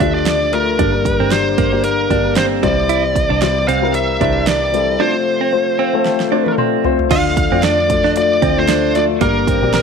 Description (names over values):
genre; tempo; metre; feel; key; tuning
piano-driven pop; 114 BPM; 4/4; swing 56% on 16ths; D minor; A4 = 444 Hz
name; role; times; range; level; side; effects
bluesy overdriven lead guitar; melody; 0.0-9.8 s; Bb4 to F5; -18 LUFS; right 1 dB; distortion
dark upright piano; accompaniment; 0.0-9.8 s; G2 to C6; -18 LUFS; left 12 dB; none
percussive tonewheel organ; sustained chords; 0.0-9.8 s; C3 to G4; -29 LUFS; equal; chorus vibrato, slow rotary speaker
direct-recorded clean electric guitar; riff; 0.0-9.8 s; Bb3 to F4; -21 LUFS; right 14 dB; none
vintage muted picked electric bass; bass; 0.0-9.8 s; G1 to F2; -22 LUFS; right 1 dB; none
pop drum kit; drums; 0.0-9.8 s; crash cymbal, hi-hat, kick drum, snare drum, toms; -21 LUFS; right 4 dB; none
room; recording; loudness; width
moderate echo chamber reverb, RT60 1.9 s, digital ambience; 1960s-style stereo with parts hard left and right; -13 LUFS; side -6 dB against mid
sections
0.0-7.1 A section; 7.1-9.8 B section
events
upright piano fill 5.5-7.1; drum fill 6.1-7.1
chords
0.0 Dm; 0.8 Gm; 2.6 C; 5.0 F; 7.1 Dm; 9.2 Gm